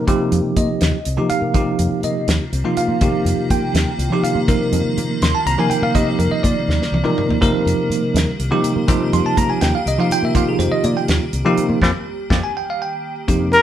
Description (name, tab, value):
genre	electric jazz fusion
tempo	82 BPM (dotted quarters)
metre	6/8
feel	straight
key	unclear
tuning	A4 = 441 Hz
part	bell-like tine electric piano	accompaniment	0.0-13.6 s	C3 to C6	-18 LUFS	right 1 dB	medium stereo tremolo
part	fingered electric bass	bass	0.0-13.6 s	C2 to F3	-21 LUFS	equal	none
part	damped 70s drum kit	drums	0.1-13.6 s	hi-hat, kick drum, snare drum, toms	-21 LUFS	equal	none
part	icy glass pad	sustained chords	2.1-13.3 s	Eb3 to G4	-27 LUFS	equal	chorus, built-in reverb
part	mellow trumpet	melody	13.5-13.6 s	Bb4	-8 LUFS	left 2 dB	none
room	moderate studio reverb, RT60 0.8 s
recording	band playing live in one room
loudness	-15 LUFS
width	side -11 dB against mid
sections	0.0-13.3 A section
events	drum fill 6.7-7.4, 13.0; band accent 11.8-13.3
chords	0.0 F9sus4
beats	| 0.08 0.81 | 1.55 2.28 | 3.02 3.75 | 4.49 5.22 | 5.95 6.69 | 7.42 8.15 | 8.89 9.62 | 10.35 11.09 | 11.82 12.55 | 13.29